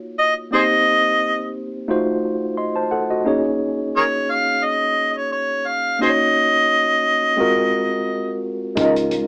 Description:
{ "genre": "lush 1970s-style soul", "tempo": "87 BPM", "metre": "4/4", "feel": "swing 54% on 16ths", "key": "Bb minor", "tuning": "A4 = 441 Hz", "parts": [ { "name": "tine electric piano", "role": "accompaniment", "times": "0.0-9.3 s", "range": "Ab3 to C6", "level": "-24 LUFS", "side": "equal", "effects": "overdrive" }, { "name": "warm harmonica", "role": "melody", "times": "0.2-8.4 s", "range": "Ab4 to F5", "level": "-19 LUFS", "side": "equal", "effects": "none" }, { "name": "electric guitar through a small old amp", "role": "riff", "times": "8.8-9.2 s", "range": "Db4 to Eb5", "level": "-23 LUFS", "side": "equal", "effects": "wah, spring reverb" }, { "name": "hollow-body short-scale fingered electric bass", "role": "bass", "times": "8.8-9.2 s", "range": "Db2", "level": "-38 LUFS", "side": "equal", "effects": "none" }, { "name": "modern studio drum kit", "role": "drums", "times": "8.8-9.3 s", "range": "hi-hat, kick drum", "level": "-30 LUFS", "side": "equal", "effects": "none" }, { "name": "congas", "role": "percussion", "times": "8.8-9.3 s", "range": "none", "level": "-39 LUFS", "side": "equal", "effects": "none" } ], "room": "light reverb", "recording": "rough home demo mix, AM radio sound", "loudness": "-19 LUFS", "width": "mono", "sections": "0.0-9.3 A section", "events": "none", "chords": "0.0 Ebm9; 0.5 Cm7; 1.9 F7b9; 3.3 Bbm7; 6.0 Ebm7; 7.4 Ab13" }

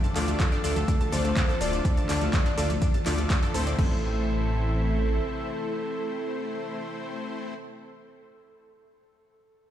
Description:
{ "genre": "progressive house", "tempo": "124 BPM", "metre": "4/4", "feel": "straight", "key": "A minor", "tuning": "A4 = 440 Hz", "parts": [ { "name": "lush unison pad", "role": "sustained chords", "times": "0.0-7.5 s", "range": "C3 to A4", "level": "-36 LUFS", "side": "right 1 dB", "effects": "chorus, sidechain pumping" }, { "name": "wide unison pluck", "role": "arpeggios", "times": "0.0-4.0 s", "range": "A3 to A6", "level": "-35 LUFS", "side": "equal", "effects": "sidechain pumping, dub echo" }, { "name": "supersaw stab", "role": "stabs", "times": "0.0-7.5 s", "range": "A2 to D5", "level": "-33 LUFS", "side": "left 2 dB", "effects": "sidechain pumping, dub echo" }, { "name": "deep house drum kit", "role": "drums", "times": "0.0-3.9 s", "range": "crash cymbal, handclaps, hi-hat, shaker", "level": "-34 LUFS", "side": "right 1 dB", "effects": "overdrive, small room ambience" }, { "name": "congas and bongos", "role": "percussion", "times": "0.0-3.6 s", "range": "none", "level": "-38 LUFS", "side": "left 3 dB", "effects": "none" }, { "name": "dark detuned saw bass", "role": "bass", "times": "0.2-5.2 s", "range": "D1 to D2", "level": "-27 LUFS", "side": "equal", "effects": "sidechain pumping" }, { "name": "soft octave-layered synth lead", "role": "melody", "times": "0.4-7.5 s", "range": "A4 to D5", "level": "-34 LUFS", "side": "right 1 dB", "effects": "chorus, phaser, dub echo" }, { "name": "electronic kick drum", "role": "drums", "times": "0.4-3.9 s", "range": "none", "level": "-25 LUFS", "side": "equal", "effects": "overdrive, small room ambience" } ], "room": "little or no reverb", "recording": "played on a big sound system in a bare room, stone room reverb", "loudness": "-24 LUFS", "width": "side -11 dB against mid", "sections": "0.0-3.8 A section; 3.8-7.7 B section", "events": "drop 0.0-3.8", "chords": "0.0 Dm; 3.8 Am" }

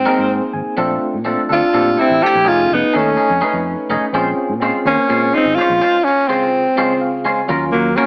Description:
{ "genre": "jazz", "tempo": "250 BPM (eighths)", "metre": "7/8", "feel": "straight", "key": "Bb dorian", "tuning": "A4 = 439 Hz", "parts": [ { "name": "breathy tenor saxophone", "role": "melody", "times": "0.0-8.1 s", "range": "Bb3 to G4", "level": "-17 LUFS", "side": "equal", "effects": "none" }, { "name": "hollow-body jazz guitar", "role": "second line", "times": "0.0-8.1 s", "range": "Gb3 to E4", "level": "-25 LUFS", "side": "equal", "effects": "none" }, { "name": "fingered electric bass", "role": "bass", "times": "0.0-7.9 s", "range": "F1 to Bb2", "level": "-27 LUFS", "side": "equal", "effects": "none" }, { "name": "tine electric piano", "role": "accompaniment", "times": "0.1-8.1 s", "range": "Db3 to Ab5", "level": "-23 LUFS", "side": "equal", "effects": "none" }, { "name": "clean electric guitar", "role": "stabs", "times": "0.1-8.1 s", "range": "F3 to C5", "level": "-23 LUFS", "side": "equal", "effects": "subtle chorus" } ], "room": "wet large studio reverb, RT60 1.1 s", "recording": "AM radio sound", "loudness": "-16 LUFS", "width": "mono", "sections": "0.0-7.5 A section", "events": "tine electric piano fill 0.1-0.8, 6.8-7.5", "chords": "0.0 Ab9; 0.8 Bbmaj9; 2.5 F7alt; 4.1 Bbm9; 7.5 Ebm9" }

